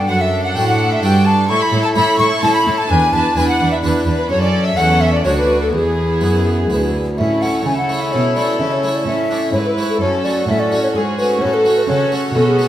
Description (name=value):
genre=classical, baroque-style concerto movement with solo episodes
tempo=128 BPM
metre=3/4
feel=straight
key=A major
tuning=A4 = 438 Hz
part: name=mellow hollow silver concert flute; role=melody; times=0.0-12.7 s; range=G#4 to C#6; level=-18 LUFS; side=left 1 dB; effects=none
part: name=warm chamber violin section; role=melody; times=0.0-12.7 s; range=E4 to B4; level=-26 LUFS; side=left 1 dB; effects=none
part: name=harpsichord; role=accompaniment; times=0.0-12.7 s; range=D2 to B4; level=-21 LUFS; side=right 1 dB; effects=none
part: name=warm chamber viola section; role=accompaniment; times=0.0-12.7 s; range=B3 to E4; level=-23 LUFS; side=equal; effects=none
part: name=rich chamber cello section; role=bass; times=0.0-12.7 s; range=D2 to C#3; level=-19 LUFS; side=right 2 dB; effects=none
part: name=warm chamber violin section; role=second line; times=0.1-12.7 s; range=C#4 to C#6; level=-24 LUFS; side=equal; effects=none
room=wet recital hall reverb, RT60 1.6 s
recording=none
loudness=-13 LUFS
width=side -12 dB against mid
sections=0.0-7.2 A section; 7.2-12.7 A section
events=none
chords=0.1 D/F#; 1.5 A; 2.9 E5; 4.3 F#m; 5.2 D; 5.7 E; 7.2 A; 10.0 F#m; 11.4 F#m/A